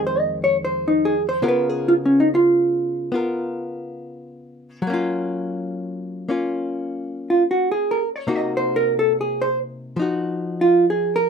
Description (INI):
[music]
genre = jazz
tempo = 70 BPM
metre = 4/4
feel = swing 68% on 8ths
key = unclear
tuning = A4 = 439 Hz
[part]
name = archtop guitar, miked and amplified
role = accompaniment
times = 0.0-11.3 s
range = F2 to Bb4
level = -26 LUFS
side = left 2 dB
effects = none
[part]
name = vintage hollow-body jazz guitar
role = melody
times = 0.1-11.3 s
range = Db4 to Eb5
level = -18 LUFS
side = right 1 dB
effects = none
[sound]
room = light reverb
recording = rough home demo mix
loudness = -18 LUFS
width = side -6 dB against mid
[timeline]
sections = 0.0-11.3 A section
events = hollow-body jazz guitar solo 0.0-11.3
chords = 0.0 Fm7; 1.4 Db6; 4.8 Gbmaj7; 8.3 Cm7b5; 10.0 Gbmaj7(no3)/F